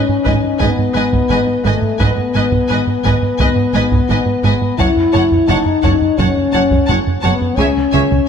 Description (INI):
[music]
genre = cinematic, hybrid orchestral and electronic film score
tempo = 86 BPM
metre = 4/4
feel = straight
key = unclear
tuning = A4 = 440 Hz
[part]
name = dark French horn section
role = sustained chords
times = 0.0-8.3 s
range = A3 to E4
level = -16 LUFS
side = left 4 dB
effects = none
[part]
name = plucky analog bass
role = riff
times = 0.0-8.2 s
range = C#2 to G#2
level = -20 LUFS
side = right 3 dB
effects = none
[part]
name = clear symphonic viola section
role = accompaniment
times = 0.2-8.0 s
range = B4 to C#5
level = -25 LUFS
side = right 2 dB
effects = none
[part]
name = warm symphonic violin section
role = melody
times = 0.3-8.3 s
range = G#5 to A5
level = -27 LUFS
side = left 2 dB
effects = none
[part]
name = clear symphonic violin section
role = second line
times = 0.3-8.0 s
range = D#5 to F#5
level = -24 LUFS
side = left 2 dB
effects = none
[part]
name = rich symphonic cello section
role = bass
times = 0.3-8.0 s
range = F#2 to C#3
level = -22 LUFS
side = right 4 dB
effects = none
[part]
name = rich symphonic double bass section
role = bass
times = 0.3-8.0 s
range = F#1 to C#2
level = -22 LUFS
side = right 4 dB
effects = none
[part]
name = taiko ensemble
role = drums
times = 0.3-8.3 s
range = none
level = -21 LUFS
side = equal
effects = none
[part]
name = dark grand piano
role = texture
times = 0.3-7.6 s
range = D#4 to A5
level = -31 LUFS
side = left 2 dB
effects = none
[sound]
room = moderate scoring stage reverb, RT60 1.7 s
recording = none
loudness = -12 LUFS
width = side -7 dB against mid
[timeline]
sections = 0.0-8.3 A section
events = none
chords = 0.0 G#m; 4.8 F#m7; 7.6 C#m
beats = 0.61 1.30 | 2.00 2.70 3.40 4.09 | 4.79 5.49 6.19 6.88 | 7.58 8.28